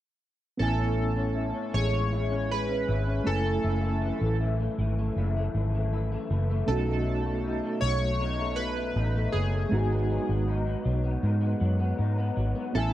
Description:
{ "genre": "indie pop, bedroom pop", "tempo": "79 BPM", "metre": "4/4", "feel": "straight", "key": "A lydian", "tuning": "A4 = 440 Hz", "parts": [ { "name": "chorused retro synth keys", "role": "melody", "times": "0.6-12.9 s", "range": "G#4 to C#5", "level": "-32 LUFS", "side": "right 1 dB", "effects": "analog chorus, slapback echo" }, { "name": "electric guitar through a small old amp", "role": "accompaniment", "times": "0.6-12.9 s", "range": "F#2 to E4", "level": "-32 LUFS", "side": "left 3 dB", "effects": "ensemble chorus, warbly pitch drift" }, { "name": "mellow reed electric piano", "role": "accompaniment", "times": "0.6-12.9 s", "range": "G#3 to G#5", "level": "-34 LUFS", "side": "right 3 dB", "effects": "fast tremolo" }, { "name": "vintage muted fingered electric bass", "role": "bass", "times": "0.6-12.9 s", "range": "F#1 to G#2", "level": "-27 LUFS", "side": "equal", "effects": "none" } ], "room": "light reverb", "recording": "worn, warbling old tape, cassette tape, warbly pitch drift", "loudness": "-25 LUFS", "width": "side -13 dB against mid", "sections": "0.6-12.9 A section", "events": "none", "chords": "0.6 Amaj7; 3.3 F#m7; 6.7 B7; 9.7 G#m7", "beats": "| 0.61 1.37 2.13 2.89 | 3.65 4.41 5.17 5.93 | 6.69 7.45 8.20 8.96 | 9.72 10.48 11.24 12.00 | 12.75" }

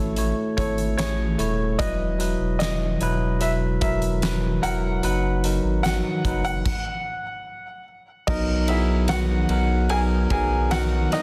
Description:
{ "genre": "pop ballad", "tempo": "74 BPM", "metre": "4/4", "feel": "straight", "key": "B major", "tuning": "A4 = 437 Hz", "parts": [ { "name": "clear baby grand piano", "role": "melody", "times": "0.0-11.2 s", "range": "D#4 to G#5", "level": "-31 LUFS", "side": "equal", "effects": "delay" }, { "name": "barky tine electric piano", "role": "accompaniment", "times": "0.0-11.2 s", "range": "B2 to C#5", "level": "-28 LUFS", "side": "equal", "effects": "none" }, { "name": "saturated sub bass", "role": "bass", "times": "0.0-11.1 s", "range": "D#1 to B1", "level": "-27 LUFS", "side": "equal", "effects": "none" }, { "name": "huge arena drum kit", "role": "drums", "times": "0.2-11.2 s", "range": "crash cymbal, hi-hat, kick drum, ride cymbal, snare drum", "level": "-31 LUFS", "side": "equal", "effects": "none" } ], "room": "light reverb, small room ambience", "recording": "dense, heavily limited modern master", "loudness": "-23 LUFS", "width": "mono", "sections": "0.0-8.3 A section; 8.3-11.2 B section", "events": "stop 6.7-8.3", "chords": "0.0 A; 1.8 Esus2; 5.0 B/F#; 6.7 N.C.; 8.3 Bmaj7", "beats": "0.17 0.98 | 1.79 2.60 3.42 4.22 | 5.04 5.85 6.66 7.47 | 8.28 9.09 9.90 10.71" }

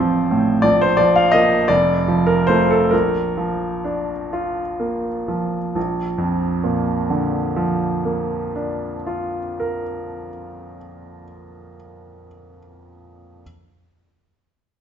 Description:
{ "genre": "classical, romantic character piece for solo piano", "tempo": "39-64 BPM (dotted quarters)", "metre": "6/8", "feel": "rubato", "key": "Bb major", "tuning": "A4 = 440 Hz", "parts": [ { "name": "bright grand piano", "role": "solo", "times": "0.0-13.4 s", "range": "F1 to F5", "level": "-17 LUFS", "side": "right 1 dB", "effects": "none" } ], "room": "moderate recital hall reverb, RT60 1.4 s", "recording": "nothing above 7.8 kHz", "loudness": "-17 LUFS", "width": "side -8 dB against mid", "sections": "0.0-5.8 A section; 5.8-11.1 B section", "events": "slowing down 0.0-5.8", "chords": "0.0 F/A; 0.6 Bb5; 1.7 F; 2.9 Bb", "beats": "| 0.64 1.70 | 2.92 4.30 | 5.75 7.11 | 8.43 9.75" }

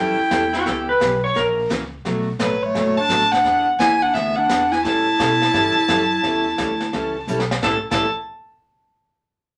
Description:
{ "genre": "country, western swing", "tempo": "172 BPM", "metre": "4/4", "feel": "swing 64% on 8ths", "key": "A mixolydian", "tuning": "A4 = 440 Hz", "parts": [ { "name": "dark fiddle", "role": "melody", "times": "0.0-8.1 s", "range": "B4 to A5", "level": "-22 LUFS", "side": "equal", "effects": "none" }, { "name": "growling clarinet", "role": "second line", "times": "0.0-8.1 s", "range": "F#3 to E4", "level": "-25 LUFS", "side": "equal", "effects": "none" }, { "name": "picked steel-string acoustic guitar", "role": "accompaniment", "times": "0.0-8.1 s", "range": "A2 to A4", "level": "-28 LUFS", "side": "equal", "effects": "none" }, { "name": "upright bass", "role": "bass", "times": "0.0-8.1 s", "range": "F#1 to B2", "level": "-32 LUFS", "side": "equal", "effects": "none" }, { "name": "jazz brush drum kit", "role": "drums", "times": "0.3-8.0 s", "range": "brushed snare drum, crash cymbal, hi-hat, kick drum, snare drum", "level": "-29 LUFS", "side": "equal", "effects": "none" }, { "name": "clean lap steel guitar", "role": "second line", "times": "0.5-1.7, 7.6-8.1 s", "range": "F#4 to C#5", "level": "-22 LUFS", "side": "equal", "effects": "none" } ], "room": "wet studio ambience, RT60 0.4 s", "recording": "none", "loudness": "-19 LUFS", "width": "mono", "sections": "0.0-7.6 A section; 7.6-9.0 B section", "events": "drum fill 7.3-7.6", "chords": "0.0 A7; 0.7 C#m7b5; 1.4 F#7; 2.1 Bm7; 3.4 E9; 4.8 A9; 7.6 A7", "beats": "0.31 | 0.66 1.01 1.36 1.71 | 2.05 2.40 2.75 3.10 | 3.45 3.80 4.14 4.49 | 4.84 5.19 5.54 5.89 | 6.24 6.58 6.93 7.28 | 7.63 7.98" }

